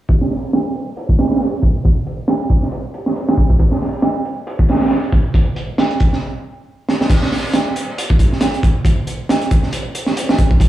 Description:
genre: breakbeat.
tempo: 137 BPM.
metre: 4/4.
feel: swing 57% on 16ths.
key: none.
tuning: none.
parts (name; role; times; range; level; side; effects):
crunchy breakbeat drum kit; drums; 0.1-10.7 s; crash cymbal, hi-hat, kick drum, snare drum; -14 LUFS; equal; none.
room: light reverb.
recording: played on a big sound system in a bare room, large studio reverb, low-pass filter, small room ambience.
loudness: -14 LUFS.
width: side -14 dB against mid.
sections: 0.1-7.1 A section; 7.1-10.7 B section.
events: filter sweep 0.1-7.1; stop 6.2-7.1; drum fill 6.9.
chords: none.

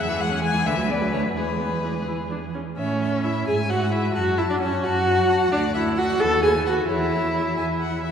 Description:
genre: quick classical-period movement for string quartet.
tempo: 87 BPM (dotted quarters).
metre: 6/8.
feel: straight.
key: A major.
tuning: A4 = 440 Hz.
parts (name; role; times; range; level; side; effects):
warm violin; melody; 0.0-8.1 s; B4 to A5; -29 LUFS; left 5 dB; none.
rich violin; second line; 0.0-8.0 s; G#4 to A5; -29 LUFS; left 2 dB; none.
clear viola; accompaniment; 0.0-8.0 s; D3 to A4; -23 LUFS; equal; none.
warm cello; bass; 0.0-8.1 s; D2 to A2; -26 LUFS; right 2 dB; none.
room: wet church reverb, RT60 3.5 s.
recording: dark, warm production.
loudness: -20 LUFS.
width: side -7 dB against mid.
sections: 0.0-2.8 A section; 2.8-8.1 A section.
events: none.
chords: 0.0 C#m/E; 0.7 Bm/D; 1.4 E; 2.8 A; 3.5 E/G#; 4.1 F#m; 5.5 D; 6.2 B/D#; 6.9 C#m/E.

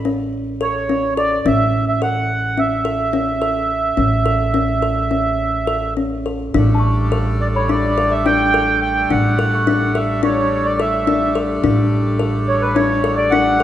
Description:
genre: contemporary instrumental, chamber music in an uneven meter.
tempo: 213 BPM (eighths).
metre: 9/8.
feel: straight.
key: A mixolydian.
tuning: A4 = 440 Hz.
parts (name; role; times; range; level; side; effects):
upright bass; bass; 0.0-13.6 s; A1; -21 LUFS; right 1 dB; none.
kalimba; arpeggios; 0.1-13.6 s; C#4 to A4; -20 LUFS; left 4 dB; none.
mellow accordion; melody; 0.6-13.6 s; B4 to G5; -18 LUFS; right 2 dB; none.
hand-pumped harmonium; sustained chords; 6.5-13.6 s; G3 to D4; -24 LUFS; equal; none.
small celesta; texture; 6.7-11.5 s; A5 to C#6; -28 LUFS; left 4 dB; none.
room: wet recital hall reverb, RT60 1.7 s.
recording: none.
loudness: -15 LUFS.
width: side -11 dB against mid.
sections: 0.0-6.6 A section; 6.6-13.6 B section.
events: none.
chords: 0.0 A; 6.6 A7sus4.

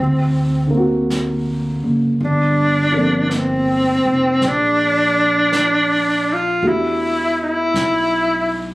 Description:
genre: jazz ballad.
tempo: 54 BPM.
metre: 4/4.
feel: swing 67% on 8ths.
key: unclear.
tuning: A4 = 440 Hz.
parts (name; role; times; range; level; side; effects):
breathy alto saxophone; melody; 0.0-8.7 s; Cb4 to F4; -16 LUFS; equal; none.
upright bass; bass; 0.0-8.7 s; F1 to E2; -21 LUFS; equal; none.
dark baby grand piano; accompaniment; 0.7-8.7 s; D3 to A4; -22 LUFS; equal; none.
jazz brush drum kit; drums; 1.1-8.7 s; brushed snare drum, hi-hat, snare drum; -31 LUFS; right 1 dB; none.
room: light reverb.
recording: recorded on a phone in the room, club reverb, compression.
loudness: -14 LUFS.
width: side -19 dB against mid.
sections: 0.0-8.7 A section.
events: none.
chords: 0.0 D7b13; 2.2 Gm11; 6.6 Em11.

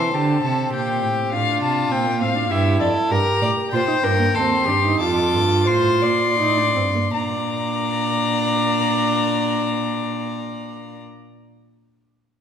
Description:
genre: classical, baroque-style fugue for string quartet.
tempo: 77-102 BPM.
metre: 3/4.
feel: straight.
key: Bb major from 3.1 s.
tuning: A4 = 442 Hz.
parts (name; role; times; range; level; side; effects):
rich violin; melody; 0.0-11.0 s; D5 to D6; -23 LUFS; left 5 dB; none.
rich violin; second line; 0.0-11.0 s; F4 to D5; -24 LUFS; left 1 dB; none.
warm viola; accompaniment; 0.0-11.0 s; Bb3 to G4; -24 LUFS; right 2 dB; none.
rich cello; bass; 0.0-11.0 s; Eb2 to E3; -24 LUFS; right 3 dB; none.
room: wet recital hall reverb, RT60 1.5 s.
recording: recorded in a church or concert hall.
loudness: -17 LUFS.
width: side -8 dB against mid.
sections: 0.0-7.1 A section; 7.1-11.8 B section.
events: slowing down 2.2-7.1.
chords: 0.0 Am; 0.7 Gm/Bb; 1.3 F/A; 2.5 Fmaj9; 3.1 Gm; 4.4 Cm/Eb; 5.0 F; 7.1 Bb.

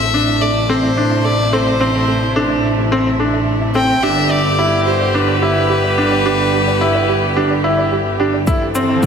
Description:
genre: piano and strings electronica.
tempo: 108 BPM.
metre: 4/4.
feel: straight.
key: A minor.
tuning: A4 = 440 Hz.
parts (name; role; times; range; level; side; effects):
rich violin; melody; 0.0-7.9 s; B4 to G5; -19 LUFS; left 1 dB; tape echo, shimmer reverb.
clear string quartet; sustained chords; 0.0-9.1 s; C3 to A4; -22 LUFS; equal; sidechain pumping, shimmer reverb.
soft round pluck; arpeggios; 0.0-9.1 s; G4 to E5; -24 LUFS; right 4 dB; chorus, sidechain pumping, tape echo, shimmer reverb.
rich chamber double bass section; bass; 0.0-8.4 s; G1 to A1; -20 LUFS; equal; sidechain pumping.
bright concert grand piano; riff; 0.1-9.0 s; C4 to E4; -17 LUFS; right 1 dB; tape echo, shimmer reverb.
electronic kick drum; drums; 8.5-9.1 s; none; -16 LUFS; left 1 dB; none.
shaker; drums; 8.5-9.1 s; none; -31 LUFS; left 2 dB; none.
riser; sound effects; 8.7-9.1 s; none; -25 LUFS; left 3 dB; none.
room: wet plate reverb, RT60 2.4 s.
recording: dreamy mix soaked in reverb.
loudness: -13 LUFS.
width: side -7 dB against mid.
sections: 0.0-8.5 A section.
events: riser 8.7-9.1.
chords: 0.0 Am; 4.0 G; 8.5 Am.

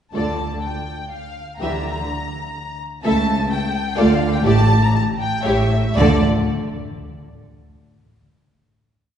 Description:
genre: quick classical-period movement for string orchestra.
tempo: 113-128 BPM.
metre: 3/4.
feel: rubato.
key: D minor.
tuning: A4 = 440 Hz.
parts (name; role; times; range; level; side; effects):
warm studio violin section; melody; 0.1-6.2 s; D5 to Bb5; -25 LUFS; left 2 dB; none.
warm symphonic violin section; second line; 0.1-6.2 s; G4 to E5; -25 LUFS; left 2 dB; none.
dark symphonic viola section; accompaniment; 0.1-6.2 s; E3 to F4; -22 LUFS; right 1 dB; none.
rich chamber double bass section; bass; 0.1-6.2 s; A1 to D2; -23 LUFS; right 1 dB; none.
warm symphonic cello section; bass; 0.1-6.2 s; A2 to D3; -23 LUFS; right 1 dB; none.
room: wet concert hall reverb, RT60 2.2 s.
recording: heard from further back in the room, nothing above 10.7 kHz.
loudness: -16 LUFS.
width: side -9 dB against mid.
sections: 0.1-6.0 A section; 6.0-7.5 final chord.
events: none.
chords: 0.1 Dm; 1.6 E7(b5, no3)/D; 3.0 A/C#; 4.0 Dm; 4.5 A7sus4; 6.0 Dm.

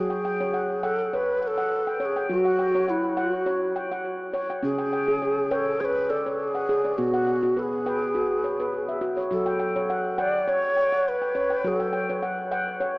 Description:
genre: world meditative.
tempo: 103 BPM.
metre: 4/4.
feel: swing 53% on 16ths.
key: F# minor.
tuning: A4 = 440 Hz.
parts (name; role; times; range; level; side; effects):
low Native American-style wooden flute; melody; 0.0-12.2 s; E4 to D5; -25 LUFS; equal; tape echo.
handpan; arpeggios; 0.0-13.0 s; B2 to G5; -26 LUFS; equal; tape echo.
room: wet cathedral reverb, RT60 5.7 s.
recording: AM radio sound.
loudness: -23 LUFS.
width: side -23 dB against mid.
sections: 0.0-13.0 A section.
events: none.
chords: 0.0 F#5; 4.6 C#5; 7.0 B5; 9.3 F#m.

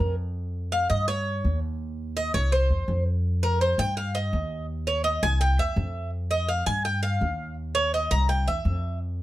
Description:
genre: latin, Cuban son and guajira.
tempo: 166 BPM.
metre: 4/4.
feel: straight.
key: unclear.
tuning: A4 = 445 Hz.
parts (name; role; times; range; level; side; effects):
Cuban tres; arpeggios; 0.0-9.0 s; Bb4 to Bb5; -26 LUFS; equal; none.
upright bass; bass; 0.0-9.2 s; C2 to G2; -26 LUFS; equal; none.
room: little or no reverb.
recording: none.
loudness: -23 LUFS.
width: side -15 dB against mid.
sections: 0.0-9.2 A section.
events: Cuban tres solo 0.0-9.2.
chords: 0.4 Ebadd9/F; 1.1 Eb7; 1.8 Cm; 2.5 C; 3.2 Fsus24; 4.0 Ebadd9; 4.7 Cm; 5.4 C; 6.1 Fm9; 6.9 Ebadd9; 7.6 Cm7; 8.3 C.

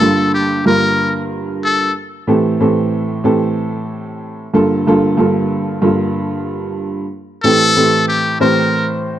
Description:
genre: hip hop.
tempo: 93 BPM.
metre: 4/4.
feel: swing 57% on 16ths.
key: unclear.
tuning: A4 = 439 Hz.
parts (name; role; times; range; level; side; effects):
trumpet with metal mute; melody; 0.0-1.9, 7.4-8.9 s; G4 to Bb4; -15 LUFS; left 2 dB; slapback echo.
dark upright piano; accompaniment; 0.0-9.2 s; G2 to C5; -14 LUFS; right 1 dB; none.
room: light reverb, studio ambience.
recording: none.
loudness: -13 LUFS.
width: side -12 dB against mid.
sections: 0.0-9.2 A section.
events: none.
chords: 0.0 Gm7; 2.3 Am7; 4.5 Gm7; 7.4 Am7.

